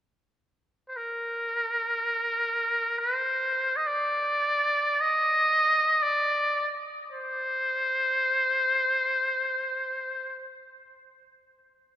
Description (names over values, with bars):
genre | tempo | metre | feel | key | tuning
caucasian folk, Caucasian lament | free time | none | none | C minor | A4 = 440 Hz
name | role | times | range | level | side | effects
trumpet with metal mute | solo | 0.9-10.5 s | Bb4 to Eb5 | -24 LUFS | equal | none
room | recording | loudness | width
moderate cathedral reverb, RT60 4.3 s | minimal, uncompressed stereo recording | -24 LUFS | side -11 dB against mid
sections
0.0-12.0 A section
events
none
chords
none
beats
free time